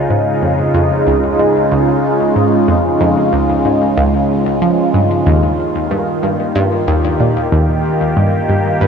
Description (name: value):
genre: ambient, sequencer-driven space music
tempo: 93 BPM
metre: 4/4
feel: straight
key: Db lydian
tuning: A4 = 440 Hz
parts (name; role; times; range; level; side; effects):
- phased analog pad; sustained chords; 0.0-8.9 s; Db3 to G4; -14 LUFS; right 1 dB; phaser, chorus
- analog pluck; riff; 0.1-8.9 s; Db2 to F3; -16 LUFS; equal; chorus, phaser, ping-pong delay
room: wet huge ambient reverb, RT60 7.7 s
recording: worn, warbling old tape, cassette tape, warbly pitch drift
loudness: -11 LUFS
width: side -6 dB against mid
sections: 0.0-8.9 A section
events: none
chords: 0.0 Db; 5.3 Eb